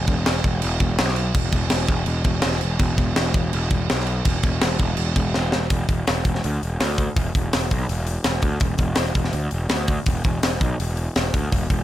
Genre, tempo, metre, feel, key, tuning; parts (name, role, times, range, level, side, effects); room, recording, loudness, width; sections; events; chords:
heavy metal; 165 BPM; 4/4; straight; A4 = 440 Hz
fuzz picked electric bass; bass; 0.0-11.8 s; E1 to D2; -23 LUFS; equal; overdrive
tight metal drum kit; drums; 0.1-11.8 s; crash cymbal, hi-hat, kick drum, snare drum; -22 LUFS; equal
little or no reverb; -19 LUFS; side -13 dB against mid
0.0-5.7 A section; 5.7-11.8 B section
drum fill 5.3-5.7